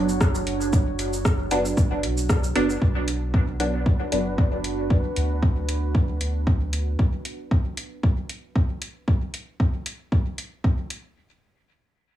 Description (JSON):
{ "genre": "dub techno", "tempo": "115 BPM", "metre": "4/4", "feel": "swing 55% on 16ths", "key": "B minor", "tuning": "A4 = 441 Hz", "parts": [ { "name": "deep dark ambient pad", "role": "sustained chords", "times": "0.0-7.0 s", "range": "D4 to C#5", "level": "-31 LUFS", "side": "right 3 dB", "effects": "chorus, built-in reverb, sidechain pumping" }, { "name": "filtered dub chord stab", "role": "stabs", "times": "0.0-4.3 s", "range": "F#3 to D4", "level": "-26 LUFS", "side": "equal", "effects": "chorus, phaser, sidechain pumping, dub echo" }, { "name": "soft dub sub bass", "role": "bass", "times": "0.0-7.0 s", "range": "F#1 to D2", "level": "-28 LUFS", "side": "equal", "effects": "tube saturation, sidechain pumping" }, { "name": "deep house drum kit", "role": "drums", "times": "0.1-11.0 s", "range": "cabasa, hi-hat, rim click", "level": "-31 LUFS", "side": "equal", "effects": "overdrive, dub echo" }, { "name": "electronic kick drum", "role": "drums", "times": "0.2-10.8 s", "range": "none", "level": "-21 LUFS", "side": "equal", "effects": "overdrive" } ], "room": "light reverb, digital ambience", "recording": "small room ambience", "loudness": "-21 LUFS", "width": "side -12 dB against mid", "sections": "0.0-2.8 A section; 2.8-11.2 B section", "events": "filter sweep on synth stab 2.8-4.9", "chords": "0.0 Bm", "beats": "0.21 | 0.73 1.25 1.77 2.29 | 2.82 3.34 3.86 4.38 | 4.90 5.42 5.95 6.47 | 6.99 7.51 8.03 8.55 | 9.08 9.60 10.12 10.64" }